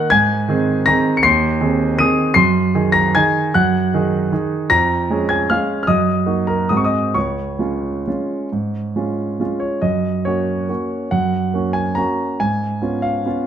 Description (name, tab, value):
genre	classical, piano waltz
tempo	126-164 BPM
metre	3/4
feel	rubato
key	Db major, F# major from 9.8 s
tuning	A4 = 440 Hz
part	warm grand piano	solo	0.0-13.5 s	Db2 to Eb7	-15 LUFS	right 1 dB	none
room	moderate recital hall reverb, RT60 1.5 s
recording	close, detailed microphones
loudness	-15 LUFS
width	side -9 dB against mid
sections	0.0-9.8 A section; 9.8-13.5 B section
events	none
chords	0.1 Ab; 2.4 Ab7/Gb; 4.7 Db/F; 5.9 Ebm/Gb; 6.7 Ab7; 7.2 Db; 9.8 F#; 12.4 C#7/G#